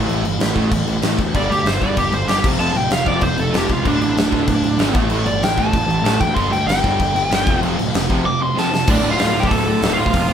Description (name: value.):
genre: punk rock.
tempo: 191 BPM.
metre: 4/4.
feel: straight.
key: unclear.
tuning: A4 = 437 Hz.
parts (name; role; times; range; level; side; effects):
crunchy overdriven guitar; riff; 0.0-10.3 s; D2 to A3; -23 LUFS; right 7 dB; none.
raw garage guitar; riff; 0.0-10.3 s; D2 to A3; -25 LUFS; left 6 dB; overdrive.
fuzz picked electric bass; bass; 0.0-10.3 s; D1 to D2; -23 LUFS; equal; overdrive.
big rock drum kit; drums; 0.1-10.2 s; crash cymbal, hi-hat, kick drum, snare drum; -20 LUFS; left 1 dB; none.
bluesy overdriven lead guitar; melody; 1.4-10.3 s; D4 to D6; -20 LUFS; equal; distortion.
room: light reverb.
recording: band playing live in one room.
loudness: -15 LUFS.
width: side -8 dB against mid.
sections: 0.0-8.9 A section; 8.9-10.3 B section.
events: lead electric guitar solo 0.0-8.9; drum fill 8.6-8.9.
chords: 0.0 A5; 1.3 G5; 2.4 F5; 3.9 D5; 5.0 A5; 6.4 G5; 7.5 F5; 8.9 Dm.